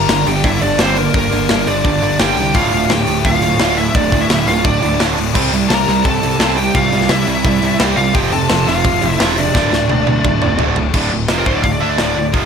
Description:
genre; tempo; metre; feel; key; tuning
heavy metal; 171 BPM; 4/4; straight; D minor; A4 = 441 Hz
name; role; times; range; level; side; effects
high-gain lead guitar; melody; 0.0-12.2 s; Bb4 to Bb5; -18 LUFS; left 1 dB; distortion
bluesy overdriven lead guitar; second line; 0.0-10.6 s; Bb3 to Bb4; -24 LUFS; right 3 dB; distortion
scooped high-gain guitar; riff; 0.0-12.5 s; D2 to D4; -21 LUFS; left 13 dB; distortion
tight distorted guitar; riff; 0.0-12.5 s; D2 to D4; -19 LUFS; right 13 dB; distortion
fuzz picked electric bass; bass; 0.0-12.5 s; D1 to D2; -20 LUFS; equal; overdrive
tight metal drum kit; drums; 0.1-12.4 s; crash cymbal, hi-hat, kick drum, snare drum, toms; -18 LUFS; left 1 dB; none
room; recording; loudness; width
little or no reverb; none; -12 LUFS; side -7 dB against mid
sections
0.0-10.9 A section; 10.9-12.5 B section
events
drum fill 9.5-10.9; lead electric guitar solo 10.9-12.5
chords
0.0 Gm; 2.5 Dm; 5.3 C; 8.1 F; 9.5 D5; 10.9 Dm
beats
0.09 0.44 0.79 | 1.14 1.49 1.84 2.19 | 2.54 2.89 3.24 3.60 | 3.94 4.30 4.65 5.00 | 5.35 5.70 6.05 6.40 | 6.75 7.10 7.45 7.80 | 8.15 8.50 8.85 9.20 | 9.54 9.89 10.24 10.59 | 10.94 11.29 11.64 11.99 | 12.34

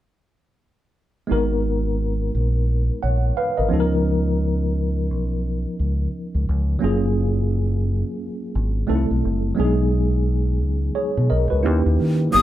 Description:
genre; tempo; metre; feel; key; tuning
R&B; 87 BPM; 4/4; swing 60% on 16ths; G# dorian; A4 = 441 Hz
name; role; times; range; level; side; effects
tine electric piano; accompaniment; 1.3-12.4 s; E#3 to F#5; -23 LUFS; equal; overdrive, fast stereo tremolo
deep dub fingered electric bass; bass; 1.3-12.4 s; F#1 to D#3; -20 LUFS; equal; none
breathy jazz flute; melody; 12.3-12.4 s; D#6; -14 LUFS; left 3 dB; none
room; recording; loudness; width
light reverb; band playing live in one room; -19 LUFS; side -13 dB against mid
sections
1.3-12.3 A section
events
none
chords
1.3 G#m9; 3.7 C#13; 6.8 F#maj9; 8.9 C6; 9.6 B6; 11.6 D#7b9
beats
| 1.29 1.98 2.67 3.36 | 4.05 4.74 5.43 6.12 | 6.81 7.50 8.19 8.88 | 9.57 10.26 10.95 11.63 | 12.32

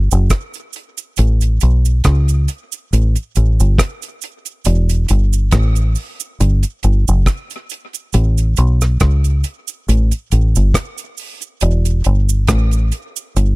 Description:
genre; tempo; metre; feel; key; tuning
dub reggae; 69 BPM; 4/4; swing 55% on 16ths; unclear; A4 = 441 Hz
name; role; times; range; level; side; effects
deep dub fingered electric bass; bass; 0.0-13.6 s; E1 to C#2; -12 LUFS; equal; none
deep reggae drum kit; drums; 0.1-13.6 s; hi-hat, kick drum, rim click; -20 LUFS; equal; none
cabasa; percussion; 0.1-13.6 s; none; -27 LUFS; right 18 dB; tape echo
room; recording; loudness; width
small room ambience; dry, close 1970s-style studio recording; -13 LUFS; side -23 dB against mid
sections
0.0-13.6 A section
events
none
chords
none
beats
0.31 | 1.18 2.05 2.92 3.79 | 4.66 5.53 6.40 7.26 | 8.13 9.01 9.88 10.74 | 11.61 12.48 13.35

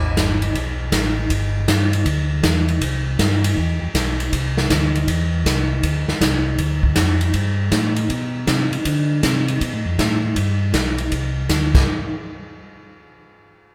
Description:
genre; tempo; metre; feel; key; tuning
soul jazz organ trio; 159 BPM; 4/4; swing 66% on 8ths; unclear; A4 = 441 Hz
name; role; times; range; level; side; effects
mellow tonewheel organ; bass; 0.0-11.9 s; G1 to D3; -22 LUFS; equal; slow rotary speaker
swinging big-band drum kit; drums; 0.2-11.8 s; crash cymbal, hi-hat, kick drum, ride cymbal, snare drum; -22 LUFS; equal; none
room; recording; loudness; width
light reverb; band playing live in one room; -19 LUFS; mono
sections
0.0-5.8 A section; 5.8-11.9 B section; 11.9-13.4 C section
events
none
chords
none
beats
0.17 0.54 0.92 | 1.30 1.68 2.06 2.43 | 2.81 3.19 3.56 3.94 | 4.32 4.70 5.08 5.45 | 5.83 6.21 6.59 6.96 | 7.34 7.72 8.10 8.47 | 8.85 9.23 9.61 9.99 | 10.36 10.74 11.12 11.50

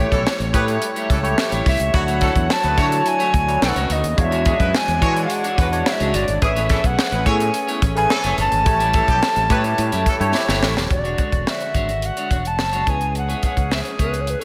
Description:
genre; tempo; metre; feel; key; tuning
polished 1980s jazz-funk pop; 107 BPM; 4/4; straight; A major; A4 = 441 Hz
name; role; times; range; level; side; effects
mellow tenor recorder; melody; 0.0-14.4 s; A4 to A5; -24 LUFS; equal; slapback echo
warm horn section; second line; 0.0-14.4 s; C#3 to C#5; -31 LUFS; equal; slapback echo, delay
barky tine electric piano; accompaniment; 0.0-14.4 s; D3 to D5; -28 LUFS; equal; overdrive, analog chorus, slapback echo
warm chamber string section; sustained chords; 0.0-10.9 s; D3 to C#5; -35 LUFS; equal; none
clean electric guitar; riff; 0.0-14.4 s; G#3 to C#5; -32 LUFS; equal; lush chorus, slapback echo
fretless electric bass; bass; 0.0-14.3 s; D#1 to E3; -26 LUFS; equal; none
tight funk drum kit; drums; 0.1-14.4 s; hi-hat, kick drum, snare drum; -24 LUFS; equal; none
room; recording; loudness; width
moderate lush hall reverb, RT60 1.7 s, small room ambience; big arena sound; -19 LUFS; mono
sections
0.0-10.9 A section; 10.9-14.4 B section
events
drum fill 10.3-10.9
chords
0.0 A7; 1.9 Dmaj9; 3.6 B9; 4.2 E13; 6.4 Amaj9; 8.7 A7; 10.9 E13; 12.9 C#m7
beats
0.26 0.82 1.38 | 1.94 2.50 3.06 3.62 | 4.18 4.74 5.30 5.86 | 6.42 6.98 7.54 8.10 | 8.66 9.22 9.78 10.34 | 10.90 11.46 12.03 12.59 | 13.15 13.71 14.28

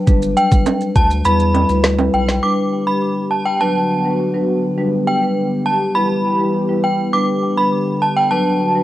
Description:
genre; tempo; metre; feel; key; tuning
dancehall; 102 BPM; 4/4; straight; unclear; A4 = 440 Hz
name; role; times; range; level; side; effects
marimba with soft mallets; accompaniment; 0.1-8.8 s; F#3 to B4; -18 LUFS; left 1 dB; cassette tape
saturated sub bass; bass; 0.1-2.4 s; G1 to E2; -19 LUFS; equal; none
afro-pop drum kit; drums; 0.1-2.4 s; hi-hat, kick drum, rim click, snare drum; -14 LUFS; equal; none
maracas and timbales; percussion; 0.1-2.4 s; none; -22 LUFS; right 5 dB; none
synth chime; melody; 0.4-8.7 s; G5 to D6; -18 LUFS; right 1 dB; ensemble chorus, analog delay
warm analog pad; sustained chords; 2.4-8.8 s; D3 to G4; -23 LUFS; equal; chorus, sidechain pumping, cassette tape
room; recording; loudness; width
light reverb; home recording on cassette; -14 LUFS; side -14 dB against mid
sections
0.0-2.4 A section; 2.4-8.8 B section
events
kick muted 1.3-2.4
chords
0.1 G; 1.3 Em; 2.4 G; 3.6 Bm; 4.8 G; 6.0 Em; 7.1 G; 8.3 Bm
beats
| 0.07 0.66 1.25 1.84 | 2.43 3.02 3.60 4.19 | 4.78 5.37 5.96 6.54 | 7.13 7.72 8.31

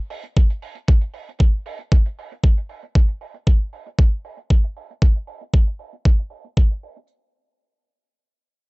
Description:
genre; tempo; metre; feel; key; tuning
nu-disco, nu disco; 116 BPM; 4/4; straight; none; none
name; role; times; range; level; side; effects
hi-hat; drums; 0.1-7.1 s; none; -41 LUFS; right 6 dB; low-pass filter on hats, low-pass filter on snare, low-pass filter on room
electronic kick drum; drums; 0.4-6.7 s; none; -15 LUFS; equal; overdrive
room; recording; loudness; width
little or no reverb; nothing above 8.0 kHz; -18 LUFS; side -30 dB against mid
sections
0.0-7.1 A section; 7.1-8.7 B section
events
filter sweep on drum 0.0-7.1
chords
none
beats
0.36 | 0.88 1.40 1.92 2.43 | 2.95 3.47 3.98 4.50 | 5.02 5.54 6.05 6.57

